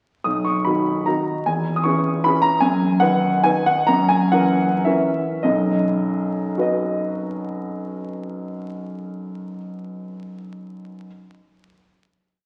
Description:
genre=classical, piano waltz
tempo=98-161 BPM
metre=3/4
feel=rubato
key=B major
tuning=A4 = 439 Hz
part: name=clear grand piano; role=solo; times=0.2-11.1 s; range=B1 to D#6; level=-21 LUFS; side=equal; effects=none
room=wet concert hall reverb, RT60 1.9 s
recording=very old 78 rpm record, vinyl crackle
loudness=-20 LUFS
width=mono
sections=0.3-5.5 A section; 5.5-8.9 final chord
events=slowing down 2.0-5.5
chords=0.3 B; 1.5 C#m/E; 2.6 B/F#; 3.9 F#7; 5.5 B

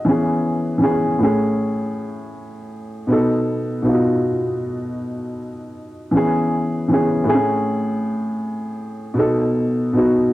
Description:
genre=hip hop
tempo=79 BPM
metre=4/4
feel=swing 56% on 16ths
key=B major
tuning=A4 = 440 Hz
part: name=dark upright piano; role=solo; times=0.0-10.3 s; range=A2 to A4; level=-18 LUFS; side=equal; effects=none
room=light reverb, small room ambience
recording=dry, gritty hardware recording, cassette tape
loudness=-17 LUFS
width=side -16 dB against mid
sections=0.0-10.3 A section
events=none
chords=0.1 E6; 1.2 Amaj7; 3.1 B7; 6.1 E6; 7.3 Amaj7; 9.2 B7

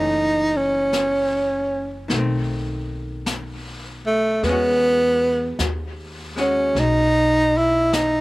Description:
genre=jazz ballad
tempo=51 BPM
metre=4/4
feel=swing 67% on 8ths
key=unclear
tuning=A4 = 438 Hz
part: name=breathy tenor saxophone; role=melody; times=0.0-8.2 s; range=A3 to E4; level=-18 LUFS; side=right 1 dB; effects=none
part: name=archtop guitar, miked and amplified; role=accompaniment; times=0.0-8.2 s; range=D#3 to F#4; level=-31 LUFS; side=left 1 dB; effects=slapback echo
part: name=upright bass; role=bass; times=0.0-8.2 s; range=F#1 to E2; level=-27 LUFS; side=left 1 dB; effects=none
part: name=jazz brush drum kit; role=drums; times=0.9-8.2 s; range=brushed snare drum, hi-hat, snare drum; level=-30 LUFS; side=left 2 dB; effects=none
room=little or no reverb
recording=none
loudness=-18 LUFS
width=side -20 dB against mid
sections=0.0-8.2 A section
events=none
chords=0.0 F#m7; 2.1 B7b9; 4.4 E69

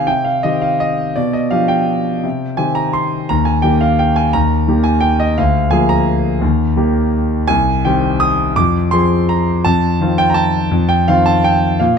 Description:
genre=classical, piano waltz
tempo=160-183 BPM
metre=3/4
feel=rubato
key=unclear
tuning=A4 = 440 Hz
part: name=warm concert grand piano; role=solo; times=0.0-12.0 s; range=C2 to Eb6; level=-12 LUFS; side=equal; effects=none
room=moderate stone room reverb, RT60 1.3 s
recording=dark, warm production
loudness=-12 LUFS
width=side -6 dB against mid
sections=0.0-12.0 A section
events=none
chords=0.0 Cm; 1.2 G7/B; 2.2 Cm; 3.3 Eb; 5.4 Bb7/D; 6.4 Eb; 7.5 Cm; 8.6 Fm; 9.7 F7

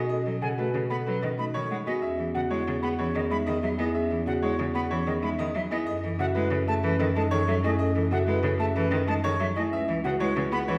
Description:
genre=classical, minimalist pattern music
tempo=187 BPM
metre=6/4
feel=straight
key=F# dorian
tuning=A4 = 441 Hz
part: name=bright concert grand piano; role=melody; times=0.0-10.8 s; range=G#4 to F#5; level=-34 LUFS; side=equal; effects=none
part: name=mellow hollow alto flute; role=second line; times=0.0-10.8 s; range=G#4 to B4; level=-37 LUFS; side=equal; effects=none
part: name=clear cello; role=accompaniment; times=0.0-10.8 s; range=C#3 to B3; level=-34 LUFS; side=equal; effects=none
part: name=marimba with soft mallets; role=arpeggios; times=0.0-10.8 s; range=C#4 to A4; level=-34 LUFS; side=equal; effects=none
part: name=mellow bass clarinet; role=bass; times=0.0-10.8 s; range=C#2 to B2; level=-32 LUFS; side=equal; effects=none
part: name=bright silver concert flute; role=arpeggios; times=0.4-10.6 s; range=D#5 to B5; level=-37 LUFS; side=equal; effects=none
room=wet scoring stage reverb, RT60 1.7 s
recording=heard from further back in the room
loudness=-27 LUFS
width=mono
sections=0.0-10.8 A section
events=none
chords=0.0 B13; 2.0 Emaj13; 5.9 F#m11; 9.7 C#m11

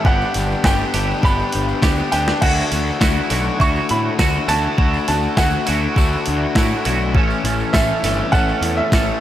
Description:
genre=indie rock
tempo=102 BPM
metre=4/4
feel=straight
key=D major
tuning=A4 = 440 Hz
part: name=clear upright piano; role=melody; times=0.0-9.2 s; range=E5 to C#6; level=-22 LUFS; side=right 2 dB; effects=slapback echo
part: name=overdriven electric guitar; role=riff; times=0.0-9.2 s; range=E3 to G4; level=-23 LUFS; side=left 7 dB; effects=slapback echo
part: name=twangy electric guitar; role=riff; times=0.0-9.2 s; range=E3 to A4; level=-24 LUFS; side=right 6 dB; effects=analog chorus, slapback echo
part: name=fuzz picked electric bass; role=bass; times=0.0-9.1 s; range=G1 to A2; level=-22 LUFS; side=equal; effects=overdrive
part: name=clean 12-bit digital drum machine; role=drums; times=0.0-9.1 s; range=crash cymbal, hi-hat, kick drum, snare drum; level=-19 LUFS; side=equal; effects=none
part: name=tambourine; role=percussion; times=0.1-9.1 s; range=none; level=-36 LUFS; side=right 6 dB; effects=none
room=light reverb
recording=none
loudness=-15 LUFS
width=side -12 dB against mid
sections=0.0-9.2 A section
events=none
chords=0.1 G; 2.4 Dadd9; 7.1 A

